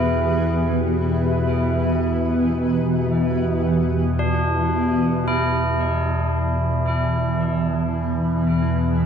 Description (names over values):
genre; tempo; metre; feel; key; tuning
dark ambient drone; free time; none; none; unclear; A4 = 441 Hz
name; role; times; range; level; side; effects
granular cloud pad; sustained chords; 0.0-9.1 s; E3 to G4; -23 LUFS; right 1 dB; built-in reverb, lush chorus
tubular bells; arpeggios; 0.0-9.1 s; D4 to E4; -26 LUFS; right 1 dB; diffuse ambient delay
analog drone; drone; 0.0-9.1 s; E2 to B2; -22 LUFS; left 1 dB; chorus
room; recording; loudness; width
moderate plate reverb, RT60 2.8 s; dreamy mix soaked in reverb; -18 LUFS; side -7 dB against mid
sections
0.0-5.3 A section; 5.3-9.1 B section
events
none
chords
0.0 Em; 5.3 E5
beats
free time